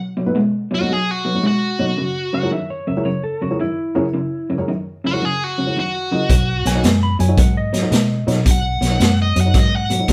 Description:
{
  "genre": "electric blues shuffle",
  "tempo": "111 BPM",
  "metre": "4/4",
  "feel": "swing 66% on 8ths",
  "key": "unclear",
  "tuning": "A4 = 440 Hz",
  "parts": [
    { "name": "electric guitar through a small old amp", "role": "riff", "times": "0.0-10.1 s", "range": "F#2 to G#3", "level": "-23 LUFS", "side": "equal", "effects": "none" },
    { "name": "dark upright piano", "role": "accompaniment", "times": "0.2-10.1 s", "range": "B2 to E5", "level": "-27 LUFS", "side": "equal", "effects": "none" },
    { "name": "smooth overdriven lead guitar", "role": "melody", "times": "0.7-10.1 s", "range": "F#4 to F#5", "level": "-24 LUFS", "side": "equal", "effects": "none" },
    { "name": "clean lap steel guitar", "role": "second line", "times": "2.3-8.4 s", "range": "E4 to B5", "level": "-28 LUFS", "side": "equal", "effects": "none" },
    { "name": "vintage muted fingered electric bass", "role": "bass", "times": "6.3-10.1 s", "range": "B1 to B2", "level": "-22 LUFS", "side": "equal", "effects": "none" },
    { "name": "raw garage drum kit", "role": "drums", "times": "6.3-10.1 s", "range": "hi-hat, kick drum, snare drum", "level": "-20 LUFS", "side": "equal", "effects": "none" }
  ],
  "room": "moderate studio reverb, RT60 0.7 s",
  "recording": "band playing live in one room",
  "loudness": "-18 LUFS",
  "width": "mono",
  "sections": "0.0-10.1 A section",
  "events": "none",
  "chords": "0.0 B7; 2.0 F#7; 6.3 B7"
}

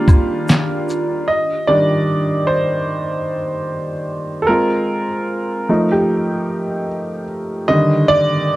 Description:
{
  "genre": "lo-fi hip hop",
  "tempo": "75 BPM",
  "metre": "4/4",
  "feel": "swing 61% on 16ths",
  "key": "Eb major",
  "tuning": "A4 = 440 Hz",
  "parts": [
    { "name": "clear upright piano", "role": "accompaniment", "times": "0.0-8.6 s", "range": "D3 to Eb5", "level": "-16 LUFS", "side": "equal", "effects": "low-pass filter" },
    { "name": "warbly tape-like pad", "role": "sustained chords", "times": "0.0-1.3 s", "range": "Eb3 to G4", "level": "-26 LUFS", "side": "right 1 dB", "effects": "chorus, built-in reverb, phaser, low-pass filter" },
    { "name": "lo-fi sampler-style drum kit", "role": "drums", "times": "0.1-1.1 s", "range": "handclaps, hi-hat, kick drum, shaker, snare drum", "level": "-11 LUFS", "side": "equal", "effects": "none" },
    { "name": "egg shaker and woodblock", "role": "percussion", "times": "0.1-1.1 s", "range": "none", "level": "-32 LUFS", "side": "left 4 dB", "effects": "none" }
  ],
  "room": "moderate studio reverb, RT60 0.6 s",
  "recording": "dark, warm production",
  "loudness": "-15 LUFS",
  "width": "side -17 dB against mid",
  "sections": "0.0-1.3 A section; 1.3-8.6 B section",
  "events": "upright piano solo 1.3-8.6",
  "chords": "0.0 Ebmaj9; 1.3 Ebmaj7; 4.5 Ab69; 5.7 F9; 7.7 Ebmaj7"
}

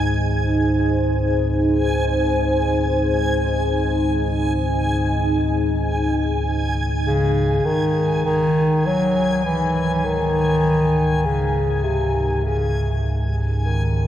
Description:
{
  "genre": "dark ambient drone",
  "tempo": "50 BPM",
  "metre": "4/4",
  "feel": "straight",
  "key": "unclear",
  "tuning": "A4 = 440 Hz",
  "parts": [
    { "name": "deep dark ambient pad", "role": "sustained chords", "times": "0.0-14.1 s", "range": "D#4 to C#5", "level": "-23 LUFS", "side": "left 1 dB", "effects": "chorus, built-in reverb" },
    { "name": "deep rumbling drone", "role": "drone", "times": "0.0-14.1 s", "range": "C#2 to G#2", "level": "-23 LUFS", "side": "equal", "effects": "built-in reverb" },
    { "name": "backwards swelling texture", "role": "texture", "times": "0.0-14.1 s", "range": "G#5", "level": "-28 LUFS", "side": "equal", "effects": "built-in reverb" },
    { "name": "warm bass clarinet", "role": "melody", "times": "7.1-14.1 s", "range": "B#2 to F#3", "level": "-19 LUFS", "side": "left 1 dB", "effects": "diffuse ambient delay" }
  ],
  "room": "wet cathedral reverb, RT60 7.2 s",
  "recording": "cassette tape",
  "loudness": "-17 LUFS",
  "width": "side -11 dB against mid",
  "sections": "0.0-7.6 A section; 7.6-14.1 B section",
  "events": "filter sweep on synth drone 7.6-14.1",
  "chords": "0.0 C#sus2"
}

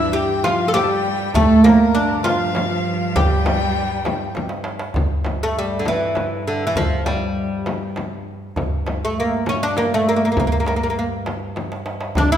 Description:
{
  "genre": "Arabic maqam ensemble",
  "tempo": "67 BPM (dotted quarters)",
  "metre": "6/8",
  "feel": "straight",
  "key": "G minor",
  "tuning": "A4 = 440 Hz",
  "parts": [
    { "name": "oud", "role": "melody", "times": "0.0-12.4 s", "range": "D3 to A4", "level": "-18 LUFS", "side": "right 1 dB", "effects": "none" },
    { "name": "dark violin", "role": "second line", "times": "0.0-4.4 s", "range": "A4 to A5", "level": "-26 LUFS", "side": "left 5 dB", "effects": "none" },
    { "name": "rich chamber cello section", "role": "second line", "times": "0.0-4.4 s", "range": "A2 to A3", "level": "-26 LUFS", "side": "right 1 dB", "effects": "none" },
    { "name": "dark double bass", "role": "drone", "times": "0.0-12.4 s", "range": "G2", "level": "-30 LUFS", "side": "right 2 dB", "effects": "none" },
    { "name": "darbuka", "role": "percussion", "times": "0.1-12.3 s", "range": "none", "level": "-25 LUFS", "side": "right 1 dB", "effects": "none" },
    { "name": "frame drum", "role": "percussion", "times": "0.5-12.3 s", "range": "none", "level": "-26 LUFS", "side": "left 2 dB", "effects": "none" }
  ],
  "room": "wet scoring stage reverb, RT60 1.8 s",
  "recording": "minimal, uncompressed stereo recording",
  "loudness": "-17 LUFS",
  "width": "side -9 dB against mid",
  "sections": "0.0-5.0 A section; 5.0-12.4 B section",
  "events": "drum fill 4.4-5.0, 11.6-12.2",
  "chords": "none"
}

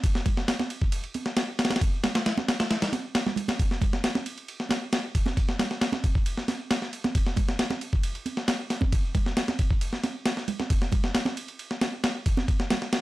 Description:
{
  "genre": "breakbeat",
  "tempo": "135 BPM",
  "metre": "4/4",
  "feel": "straight",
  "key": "none",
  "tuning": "none",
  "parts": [
    { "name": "breakbeat sampler-style drum kit", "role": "drums", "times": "0.0-13.0 s", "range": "kick drum, ride cymbal, snare drum", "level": "-25 LUFS", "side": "equal", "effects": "none" },
    { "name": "congas", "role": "percussion", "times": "0.3-12.8 s", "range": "none", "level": "-33 LUFS", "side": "right 5 dB", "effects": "none" }
  ],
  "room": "light reverb",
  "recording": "dark, warm production",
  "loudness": "-24 LUFS",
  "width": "side -17 dB against mid",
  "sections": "0.0-13.0 A section",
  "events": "kick drops out 2.7-3.6",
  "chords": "none"
}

